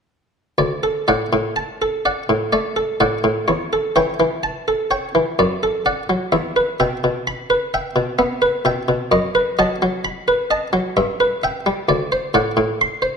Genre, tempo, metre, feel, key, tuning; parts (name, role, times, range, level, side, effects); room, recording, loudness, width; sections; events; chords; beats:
classical, baroque-style suite movement for harpsichord; 64 BPM; 3/4; rubato; D major; A4 = 437 Hz
buff-stop harpsichord; solo; 0.6-13.2 s; D2 to C6; -17 LUFS; equal
wet recital hall reverb, RT60 1.5 s; dark, warm production; -17 LUFS; side -6 dB against mid
0.6-13.2 A section
0.6 D; 3.5 A7/E; 5.4 D/F#; 6.3 Em; 9.1 B7/F#; 11.0 Em/G; 11.9 D7
| 0.58 1.57 2.53 | 3.49 4.44 5.39 | 6.32 7.26 8.18 | 9.11 10.03 10.96 | 11.88 12.79